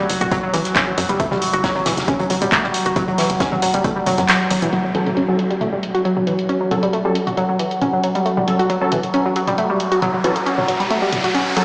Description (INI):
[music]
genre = driving peak-time techno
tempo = 136 BPM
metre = 4/4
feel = straight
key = F# phrygian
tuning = A4 = 442 Hz
[part]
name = analog pluck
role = riff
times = 0.0-11.6 s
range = E3 to F#4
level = -19 LUFS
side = equal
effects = chorus, tube saturation, sidechain pumping, tape echo
[part]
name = tight sequencer bass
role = bass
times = 0.0-4.6 s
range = E1 to F#2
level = -26 LUFS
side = equal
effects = sidechain pumping
[part]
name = overtone-sweeping drone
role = drone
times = 0.0-11.6 s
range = F#3 to F#4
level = -22 LUFS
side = equal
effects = chorus, built-in reverb, sidechain pumping
[part]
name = punchy analog drum machine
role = drums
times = 0.1-11.6 s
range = handclaps, hi-hat, toms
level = -23 LUFS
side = equal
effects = low-pass filter on hats, low-pass filter on toms, low-pass filter on snare, low-pass filter on room
[part]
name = soft-mallet drum kit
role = drums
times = 0.1-4.6 s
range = hi-hat, snare drum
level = -29 LUFS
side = equal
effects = sidechain pumping on hats, high-pass filter on hats, high-pass filter on snare, high-pass filter on room
[part]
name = electronic kick drum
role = drums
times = 0.3-3.9 s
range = none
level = -23 LUFS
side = equal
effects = none
[part]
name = impact and riser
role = sound effects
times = 4.7-11.6 s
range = none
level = -26 LUFS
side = equal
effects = none
[part]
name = rave stab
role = stabs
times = 4.9-11.6 s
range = F#3 to A4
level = -24 LUFS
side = equal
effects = chorus, built-in reverb, sidechain pumping, digital delay
[sound]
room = moderate huge ambient reverb, RT60 7.4 s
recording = played on a big sound system in a bare room, large studio reverb, small speaker sound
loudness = -16 LUFS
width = side -32 dB against mid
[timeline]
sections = 0.0-4.7 A section; 4.7-11.6 B section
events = kick drops out 4.3-4.7; band accent 4.3; impact 4.7-6.5; filter sweep on synth arpeggio sound 4.7-11.6; filter sweep on synth stab 4.7-11.6; riser 9.1-11.6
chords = 0.0 F#m